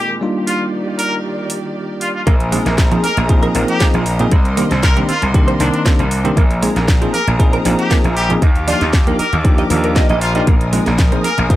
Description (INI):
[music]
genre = nu-disco, nu disco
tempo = 117 BPM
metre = 4/4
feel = straight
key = Bb mixolydian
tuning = A4 = 441 Hz
[part]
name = muted trumpet section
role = melody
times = 0.0-11.4 s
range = D4 to Bb4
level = -22 LUFS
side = left 1 dB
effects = analog delay
[part]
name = bell-like tine electric piano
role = accompaniment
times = 0.0-11.6 s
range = Eb3 to Bb4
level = -20 LUFS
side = equal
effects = fast stereo tremolo, sidechain pumping
[part]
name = rich studio string section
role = sustained chords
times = 0.0-11.6 s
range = Bb2 to Eb6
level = -26 LUFS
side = equal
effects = sidechain pumping
[part]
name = house drum kit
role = drums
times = 0.5-11.6 s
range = hi-hat, snare drum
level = -24 LUFS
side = equal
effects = none
[part]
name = direct-recorded clean electric guitar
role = riff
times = 2.3-11.4 s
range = Bb2 to Eb5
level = -22 LUFS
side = right 3 dB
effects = analog chorus
[part]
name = gritty slap bass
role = bass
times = 2.3-11.6 s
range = Bb1 to Eb2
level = -18 LUFS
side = equal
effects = overdrive
[part]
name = electronic kick drum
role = drums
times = 2.3-11.6 s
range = none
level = -13 LUFS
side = equal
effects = none
[sound]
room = little or no reverb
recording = dry, gritty hardware recording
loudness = -12 LUFS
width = side -15 dB against mid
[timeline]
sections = 0.0-2.3 A section; 2.3-11.6 B section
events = drop 2.3-11.6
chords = 0.2 Ebmaj7; 2.3 Bb7sus4; 4.3 Cm7; 6.4 Bb7sus4; 8.4 Ebmaj7; 10.5 Bb7sus4